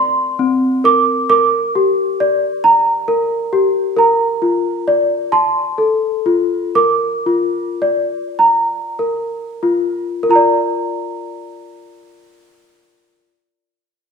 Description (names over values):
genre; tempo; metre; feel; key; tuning
children's music; 28-45 BPM (dotted quarters); 6/8; rubato; Bb major; A4 = 437 Hz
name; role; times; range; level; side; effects
worn celesta; melody; 0.0-13.4 s; C4 to D6; -13 LUFS; equal; none
room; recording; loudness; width
wet recital hall reverb, RT60 1.6 s; recorded in a church or concert hall; -13 LUFS; side -6 dB against mid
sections
0.0-10.3 A section; 10.3-14.1 B section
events
slowing down 4.0-10.3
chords
0.0 Bbadd9; 1.3 Gm; 4.0 Bb; 5.3 F; 6.7 Bb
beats
| 1.29 2.64 | 3.97 5.32 | 6.75 8.38 | 10.30 12.36